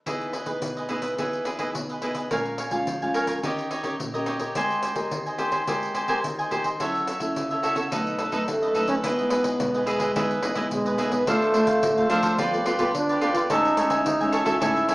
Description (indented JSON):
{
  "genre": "samba and choro",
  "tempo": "107 BPM",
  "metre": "4/4",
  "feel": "straight",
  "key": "unclear",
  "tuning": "A4 = 440 Hz",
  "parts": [
    { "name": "cavaquinho", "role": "accompaniment", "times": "0.1-14.9 s", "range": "D4 to G#5", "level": "-25 LUFS", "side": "right 1 dB", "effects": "none" },
    { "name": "nylon-string guitar", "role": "accompaniment", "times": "0.1-14.9 s", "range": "F#2 to A#4", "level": "-30 LUFS", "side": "equal", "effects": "none" },
    { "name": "pandeiro", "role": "percussion", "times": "0.1-14.9 s", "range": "none", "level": "-33 LUFS", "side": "left 1 dB", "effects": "none" },
    { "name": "breathy trombone", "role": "melody", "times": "8.5-14.9 s", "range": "F3 to F#4", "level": "-24 LUFS", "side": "equal", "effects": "none" }
  ],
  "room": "wet large studio reverb, RT60 0.9 s",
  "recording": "band playing live in one room, small speaker sound",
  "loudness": "-22 LUFS",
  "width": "side -20 dB against mid",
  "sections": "0.1-9.0 A section; 9.0-14.9 B section",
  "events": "none",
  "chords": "0.1 Emaj7; 2.3 A#m7; 3.4 D#7; 4.6 G#maj9; 6.8 F#m7; 7.9 B7; 9.0 Emaj7; 11.3 Dm7; 12.4 G9; 13.5 Amaj7#11"
}